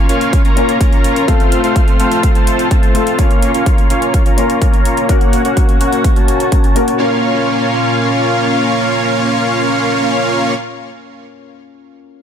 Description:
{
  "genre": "EDM, festival progressive house",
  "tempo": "126 BPM",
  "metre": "4/4",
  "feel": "straight",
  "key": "Bb harmonic minor",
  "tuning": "A4 = 439 Hz",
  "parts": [
    { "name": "felt-muted upright piano", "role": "accompaniment", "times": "0.0-12.2 s", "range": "A3 to Bb4", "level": "-20 LUFS", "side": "left 4 dB", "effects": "sidechain pumping, ping-pong delay" },
    { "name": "warm chamber string section", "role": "sustained chords", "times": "0.0-10.5 s", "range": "Bb2 to C5", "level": "-22 LUFS", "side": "left 1 dB", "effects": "sidechain pumping" },
    { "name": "dense compressed supersaw", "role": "riff", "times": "0.0-10.5 s", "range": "A3 to Bb5", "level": "-15 LUFS", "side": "right 1 dB", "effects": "sidechain pumping, low-pass filter, ping-pong delay" },
    { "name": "electronic hi-hat", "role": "drums", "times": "0.1-7.0 s", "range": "none", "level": "-27 LUFS", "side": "equal", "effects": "none" },
    { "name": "electronic kick drum", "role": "drums", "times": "0.3-6.6 s", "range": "none", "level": "-12 LUFS", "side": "equal", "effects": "none" }
  ],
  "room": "light reverb, digital ambience",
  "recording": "none",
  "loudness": "-11 LUFS",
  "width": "side -8 dB against mid",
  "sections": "0.0-7.0 A section; 7.0-10.8 B section",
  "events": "filter sweep on supersaw synth 0.0-7.0",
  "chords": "0.0 Bbm; 1.3 F; 3.2 Bbm; 5.1 Gb; 7.0 Bbm"
}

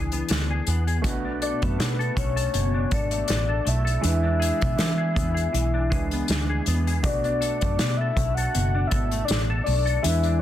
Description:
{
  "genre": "indie pop, bedroom pop",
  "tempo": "80 BPM",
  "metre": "4/4",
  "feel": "swing 55% on 16ths",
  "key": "B dorian",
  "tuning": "A4 = 440 Hz",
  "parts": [
    { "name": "semi-hollow electric guitar", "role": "accompaniment", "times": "0.0-10.4 s", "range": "B2 to A4", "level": "-30 LUFS", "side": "left 3 dB", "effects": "ensemble chorus, vibrato effect" },
    { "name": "warm upright piano", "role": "accompaniment", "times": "0.0-10.4 s", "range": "G#3 to B4", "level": "-34 LUFS", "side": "right 5 dB", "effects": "none" },
    { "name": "vintage muted fingered electric bass", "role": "bass", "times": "0.0-10.4 s", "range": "F#1 to E3", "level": "-25 LUFS", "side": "equal", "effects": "none" },
    { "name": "unplugged drum kit", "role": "drums", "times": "0.1-10.4 s", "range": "hi-hat, kick drum, snare drum", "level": "-28 LUFS", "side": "equal", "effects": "soft clipping on kick" },
    { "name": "soft octave-layered synth lead", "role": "melody", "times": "1.4-10.4 s", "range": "B4 to F#5", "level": "-28 LUFS", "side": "left 3 dB", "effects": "lush chorus, tape echo" }
  ],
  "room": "light reverb, studio ambience",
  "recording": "dense, heavily limited modern master",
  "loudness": "-21 LUFS",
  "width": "side -12 dB against mid",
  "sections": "0.0-10.4 A section",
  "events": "none",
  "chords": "0.0 E7; 1.0 Bm7; 4.0 E7; 7.0 Bm7"
}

